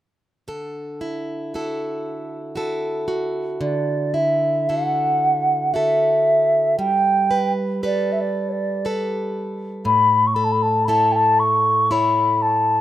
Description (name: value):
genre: celtic folk, Celtic slow air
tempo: 58 BPM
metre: 3/4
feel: rubato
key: D major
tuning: A4 = 440 Hz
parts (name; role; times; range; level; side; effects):
- picked plugged-in acoustic archtop guitar; accompaniment; 0.5-12.8 s; A2 to C#5; -24 LUFS; right 1 dB; none
- mellow hollow wooden flute; melody; 3.6-12.8 s; C#5 to C#6; -17 LUFS; equal; none
room: studio reverb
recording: rough home demo mix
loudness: -17 LUFS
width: side -13 dB against mid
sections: 0.5-3.6 A section; 3.6-12.8 B section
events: none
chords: 0.5 Dadd9; 6.8 Gadd9; 9.9 A